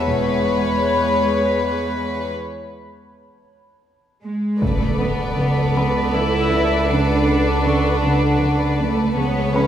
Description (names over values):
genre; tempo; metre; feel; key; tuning
cinematic, suspense film score; 79 BPM; 3/4; straight; unclear; A4 = 440 Hz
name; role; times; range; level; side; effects
warbly tape-like pad; sustained chords; 0.0-9.7 s; B4 to B5; -26 LUFS; left 1 dB; chorus, built-in reverb
warm symphonic cello section; bass; 0.0-9.7 s; E2 to E4; -22 LUFS; right 2 dB; none
bright concert grand piano; texture; 0.0-9.7 s; A4 to C#6; -31 LUFS; left 1 dB; none
warm symphonic violin section; melody; 0.1-9.7 s; C#5 to D5; -26 LUFS; left 6 dB; none
warm studio violin section; second line; 0.1-9.7 s; B4; -26 LUFS; left 4 dB; none
dark symphonic viola section; accompaniment; 0.1-9.7 s; G#3 to A4; -26 LUFS; right 2 dB; none
warm symphonic double bass section; bass; 0.1-0.8, 4.6-9.7 s; E1 to C#2; -24 LUFS; right 2 dB; none
dark studio cello section; riff; 4.6-9.7 s; C#3; -23 LUFS; right 1 dB; none
impact; sound effects; 4.6-6.9 s; none; -26 LUFS; left 1 dB; none
room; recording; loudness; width
wet scoring stage reverb, RT60 1.7 s; recorded in a church or concert hall; -16 LUFS; side -10 dB against mid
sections
0.0-4.6 A section; 4.6-9.7 B section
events
break 2.3-4.6; impact 4.6-6.9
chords
0.1 C#m7/E; 4.6 Bm7/C#; 9.2 C#m7